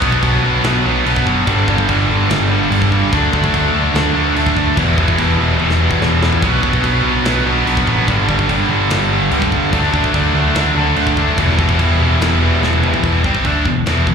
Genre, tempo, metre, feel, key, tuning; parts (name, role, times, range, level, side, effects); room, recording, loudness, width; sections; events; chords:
heavy metal; 145 BPM; 4/4; straight; E minor; A4 = 440 Hz
distorted electric guitar; riff; 0.0-13.0 s; G2 to E4; -20 LUFS; right 1 dB; overdrive, slapback echo
high-gain distorted guitar; riff; 0.0-14.1 s; E2 to D4; -18 LUFS; left 11 dB; distortion
scooped high-gain guitar; riff; 0.0-14.1 s; E2 to D4; -18 LUFS; right 11 dB; distortion, slapback echo
overdriven picked electric bass; bass; 0.0-14.1 s; E1 to D2; -18 LUFS; equal
tight metal drum kit; drums; 0.0-14.1 s; crash cymbal, kick drum, snare drum, toms; -22 LUFS; equal
small room ambience; live gig heard through the venue's PA, club reverb; -12 LUFS; side -6 dB against mid
0.0-13.0 A section; 13.0-14.1 B section
drum fill 5.6-6.4, 12.6-13.0
0.0 Bm; 1.5 G; 3.1 D; 4.8 Em; 6.4 Bm; 8.1 G; 9.7 D; 11.4 Em